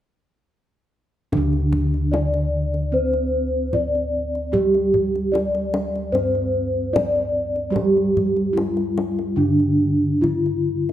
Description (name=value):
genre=Javanese gamelan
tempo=75 BPM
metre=4/4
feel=straight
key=unclear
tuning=A4 = 440 Hz
part: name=gamelan-type bronze metallophone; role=melody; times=1.3-10.9 s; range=D4 to D5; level=-21 LUFS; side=left 1 dB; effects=none
part: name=gamelan-type bronze metallophone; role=accompaniment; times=1.3-10.9 s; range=D3 to C4-25c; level=-25 LUFS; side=right 2 dB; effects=none
part: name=gamelan-type bossed gongs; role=bass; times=1.3-10.9 s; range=D2 to G4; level=-25 LUFS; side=equal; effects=none
part: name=kendang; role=percussion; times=1.3-10.9 s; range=none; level=-29 LUFS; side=left 2 dB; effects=none
room=moderate recital hall reverb, RT60 1.6 s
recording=none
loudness=-18 LUFS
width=side -11 dB against mid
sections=1.3-10.9 A section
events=none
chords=none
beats=| 1.33 2.13 2.93 3.73 | 4.53 5.33 6.13 6.93 | 7.73 8.54 9.37 10.21